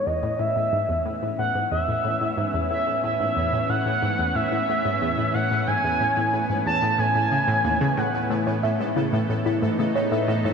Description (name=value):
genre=ambient, sequencer-driven space music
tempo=91 BPM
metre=4/4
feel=straight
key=A lydian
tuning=A4 = 440 Hz
part: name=expressive synth lead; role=melody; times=0.0-8.3 s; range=D#5 to A5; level=-24 LUFS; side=right 1 dB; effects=lush chorus, ping-pong delay
part: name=lush unison pad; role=sustained chords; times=0.0-10.5 s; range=A2 to D#4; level=-28 LUFS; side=equal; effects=chorus
part: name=pulsing gated texture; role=texture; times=0.0-10.5 s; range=B3 to B4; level=-36 LUFS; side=left 1 dB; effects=chorus, built-in reverb
part: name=analog pluck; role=riff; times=0.1-10.5 s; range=D#2 to C#3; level=-27 LUFS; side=equal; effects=chorus, ping-pong delay
part: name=thumb-piano-like synth pluck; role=arpeggios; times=8.3-10.5 s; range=A3 to E5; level=-25 LUFS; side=moving between left 6 dB and equal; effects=chorus, auto-pan, ping-pong delay
room=wet lush hall reverb, RT60 2.6 s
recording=dreamy mix soaked in reverb, cassette tape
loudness=-21 LUFS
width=side -6 dB against mid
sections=0.0-10.5 A section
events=fade-in on analog synth pad 0.0-10.5; fade-in on synth texture 0.0-10.5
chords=0.0 Aadd9